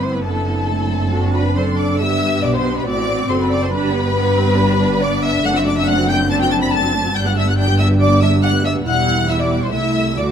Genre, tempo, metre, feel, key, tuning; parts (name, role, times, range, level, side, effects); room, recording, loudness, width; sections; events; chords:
quick classical-period movement for symphony orchestra; 139 BPM; 4/4; rubato; G major; A4 = 437 Hz
warm studio violin section; melody; 0.0-10.3 s; A5 to B6; -24 LUFS; left 2 dB
warm studio violin section; second line; 0.0-10.3 s; A4 to B5; -21 LUFS; left 2 dB
warm studio viola section; accompaniment; 0.0-10.3 s; G3 to A4; -23 LUFS; right 4 dB
dark French horn section; sustained chords; 0.0-10.3 s; G3 to F#4; -21 LUFS; left 3 dB
warm studio cello section; bass; 0.0-10.3 s; C2 to B2; -21 LUFS; right 1 dB
warm studio double bass section; bass; 0.0-10.3 s; E1 to D2; -22 LUFS; right 4 dB
moderate concert hall reverb, RT60 2.3 s; close, detailed microphones; -14 LUFS; side -8 dB against mid
0.0-10.3 A section
0.2 D7/F#; 2.0 G; 2.9 F#dim/A; 3.7 G; 5.4 D7/F#; 7.2 G; 8.9 Em; 9.7 Am/C